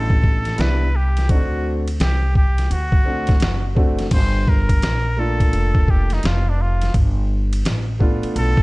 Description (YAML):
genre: hip hop, jazz-hop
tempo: 85 BPM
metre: 4/4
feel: swing 64% on 16ths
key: G minor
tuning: A4 = 441 Hz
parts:
  - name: trumpet with straight mute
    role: melody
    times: 0.0-8.6 s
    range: D4 to C5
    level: -26 LUFS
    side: equal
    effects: slapback echo
  - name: warm concert grand piano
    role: accompaniment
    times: 0.0-8.6 s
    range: B2 to F#4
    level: -26 LUFS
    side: equal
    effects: none
  - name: upright bass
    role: bass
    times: 0.0-8.6 s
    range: F1 to D2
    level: -20 LUFS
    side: equal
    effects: none
  - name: trip hop sampler-style drum kit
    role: drums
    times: 0.1-8.6 s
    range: crash cymbal, hi-hat, kick drum, ride cymbal, snare drum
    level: -18 LUFS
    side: equal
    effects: none
room: small room ambience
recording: dark, warm production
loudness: -16 LUFS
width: side -23 dB against mid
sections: 0.0-4.1 A section; 4.1-8.6 B section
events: muted trumpet solo 4.1-8.6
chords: 0.0 Cmaj7; 1.3 D7; 4.1 Gm7; 6.9 G7